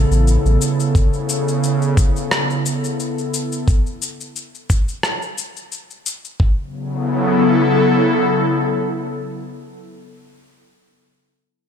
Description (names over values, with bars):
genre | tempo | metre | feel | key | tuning
organic downtempo | 88 BPM | 4/4 | swing 54% on 16ths | A major | A4 = 440 Hz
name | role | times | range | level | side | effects
airy breathy pad | sustained chords | 0.0-9.9 s | C#3 to A4 | -17 LUFS | equal | chorus, sidechain pumping
warm sub bass | bass | 0.0-0.6 s | A1 | -14 LUFS | equal | tube saturation, sidechain pumping
electronic shaker and rim click | drums | 0.1-6.4 s | none | -24 LUFS | left 2 dB | none
electronic kick drum | drums | 0.9-6.5 s | none | -15 LUFS | equal | none
room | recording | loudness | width
moderate echo chamber reverb, RT60 2.2 s | none | -16 LUFS | side -8 dB against mid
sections
0.0-6.4 A section; 6.4-9.1 B section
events
none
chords
0.0 Aadd9; 0.9 Aadd9/C#; 3.7 N.C.; 6.4 Aadd9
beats
0.27 | 0.95 1.63 2.31 2.99 | 3.67 4.36 5.04 5.72 | 6.40 7.08 7.76 8.45